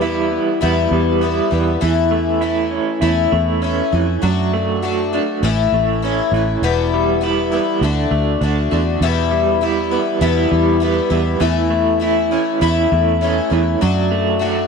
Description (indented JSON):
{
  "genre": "folk rock and heartland rock",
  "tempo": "100 BPM",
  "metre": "4/4",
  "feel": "straight",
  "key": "E dorian",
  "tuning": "A4 = 440 Hz",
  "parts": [
    { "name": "picked twelve-string acoustic guitar", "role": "accompaniment", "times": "0.0-14.7 s", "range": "E2 to F#4", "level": "-18 LUFS", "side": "left 12 dB", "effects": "wide subtle chorus" },
    { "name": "electric guitar through a small old amp", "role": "riff", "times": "0.0-14.7 s", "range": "E2 to F#4", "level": "-19 LUFS", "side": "right 11 dB", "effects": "tremolo" },
    { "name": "fingered electric bass", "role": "bass", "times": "0.0-14.7 s", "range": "E1 to F#2", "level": "-19 LUFS", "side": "right 1 dB", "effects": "none" }
  ],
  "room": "light reverb, studio reverb",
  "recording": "1960s-style stereo with parts hard left and right",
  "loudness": "-14 LUFS",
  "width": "side -5 dB against mid",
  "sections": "0.0-9.0 A section; 9.0-14.7 A section",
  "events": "none",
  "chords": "0.0 Em; 1.8 A/E; 4.2 D/F#; 5.4 A; 6.6 Em; 7.8 D; 9.0 Em; 11.4 A/E; 13.8 D/F#"
}